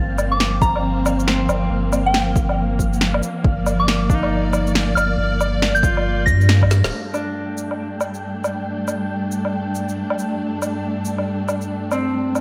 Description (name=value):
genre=future garage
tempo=138 BPM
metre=4/4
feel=swing 61% on 16ths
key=G minor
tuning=A4 = 440 Hz
part: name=warm symphonic string section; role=sustained chords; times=0.0-12.4 s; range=G2 to D5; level=-26 LUFS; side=equal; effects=sidechain pumping, low-pass filter
part: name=warm sub bass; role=bass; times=0.0-6.9 s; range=D1 to G2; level=-23 LUFS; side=equal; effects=sidechain pumping
part: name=wind-like tuned noise texture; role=texture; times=0.0-12.4 s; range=F5 to G5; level=-37 LUFS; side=equal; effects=built-in reverb, subtle chorus
part: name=electronic shaker, woodblock and snare drum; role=drums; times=0.2-12.4 s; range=none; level=-25 LUFS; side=equal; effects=none
part: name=soft synth bell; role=melody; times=0.3-6.9 s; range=G5 to Bb6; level=-26 LUFS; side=equal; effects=chorus, phaser, digital delay
part: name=electronic kick drum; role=drums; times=0.6-6.7 s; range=none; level=-21 LUFS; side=equal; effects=none
part: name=clean electric guitar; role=accompaniment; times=1.3-7.9, 11.9-12.4 s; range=C4 to F4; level=-30 LUFS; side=equal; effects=sidechain pumping, digital delay
room=moderate plate reverb, RT60 1.5 s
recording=bright 1980s-style digital production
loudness=-20 LUFS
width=mono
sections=0.0-6.9 A section; 6.9-12.4 B section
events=drum fill 6.7; band accent 6.8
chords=0.0 Fsus4/G; 6.9 Gsus2